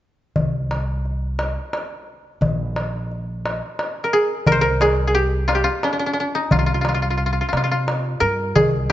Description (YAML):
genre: Arabic maqam ensemble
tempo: 88 BPM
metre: 3/4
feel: straight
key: C maqam bayati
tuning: A4 = 440 Hz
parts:
  - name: upright bass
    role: bass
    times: 0.4-8.9 s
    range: Bb1 to C3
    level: -23 LUFS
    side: equal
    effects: none
  - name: darbuka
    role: percussion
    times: 0.4-8.7 s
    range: none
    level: -23 LUFS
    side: left 1 dB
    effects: none
  - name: koto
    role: melody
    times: 4.0-8.9 s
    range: D4-50c to C5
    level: -19 LUFS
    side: equal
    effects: none
room: moderate recital hall reverb, RT60 1.8 s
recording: nothing above 7.7 kHz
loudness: -18 LUFS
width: side -13 dB against mid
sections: 0.4-4.5 A section; 4.5-8.9 B section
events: none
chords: none